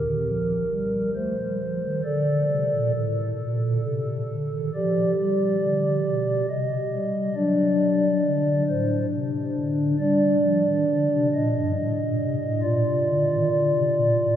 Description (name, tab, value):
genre	classical, chorale-style piece for pipe organ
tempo	68 BPM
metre	3/4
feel	straight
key	G minor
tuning	A4 = 439 Hz
part	pipe organ, stopped flute	solo	0.0-14.4 s	G2 to Eb5	-21 LUFS	equal	none
room	wet cathedral reverb, RT60 5.9 s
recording	heard from further back in the room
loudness	-21 LUFS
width	side -10 dB against mid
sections	0.0-14.4 A section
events	none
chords	0.0 Gm; 1.1 F; 2.0 D5; 4.7 G7/F; 6.5 Cm; 7.4 D7; 10.0 G5; 11.8 Adim; 12.6 Bb